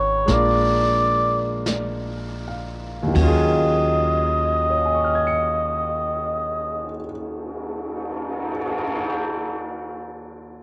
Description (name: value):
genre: jazz ballad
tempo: 39-45 BPM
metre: 4/4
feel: swing 67% on 8ths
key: Eb minor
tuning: A4 = 441 Hz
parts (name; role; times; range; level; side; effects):
- trumpet with cup mute; melody; 0.0-7.0 s; Db5 to Eb5; -23 LUFS; equal; none
- warm concert grand piano; accompaniment; 0.0-10.6 s; Eb2 to Db7; -28 LUFS; equal; cassette tape
- upright bass; bass; 0.0-6.9 s; Ab1 to Eb2; -28 LUFS; equal; none
- jazz brush drum kit; drums; 0.3-9.0 s; brushed snare drum, cymbal swell, hi-hat, kick drum, ride cymbal, snare drum; -32 LUFS; equal; none
room: moderate spring reverb, RT60 2.8 s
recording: home recording on cassette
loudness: -22 LUFS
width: mono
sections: 0.0-3.2 A section; 3.2-9.3 B section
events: slowing down 0.0-3.2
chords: 0.3 Bb7; 3.2 Ebm11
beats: 0.27 1.66 | 3.15 4.70 6.23 7.77